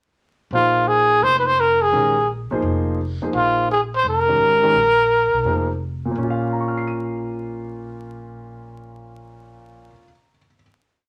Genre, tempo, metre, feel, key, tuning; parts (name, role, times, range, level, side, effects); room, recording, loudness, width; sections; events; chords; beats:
modal jazz; 170 BPM; 4/4; swing 64% on 8ths; Bb minor; A4 = 439 Hz
breathy trumpet; melody; 0.5-5.8 s; F4 to C5; -18 LUFS; equal
warm grand piano; accompaniment; 0.5-10.6 s; Bb2 to Eb7; -28 LUFS; equal
upright bass; bass; 0.5-9.9 s; F1 to F2; -30 LUFS; equal
moderate studio reverb, RT60 0.6 s; vinyl crackle; -19 LUFS; mono
0.5-6.2 A section; 6.2-9.0 final chord
0.5 Bb9sus4; 6.2 Bbm
| 0.52 0.87 1.22 1.58 | 1.93 2.29 2.64 2.99 | 3.34 3.70 4.05 4.40 | 4.75 5.11 5.46 5.81 | 6.16 6.51 6.87 7.22 | 7.57 7.93 8.28 8.63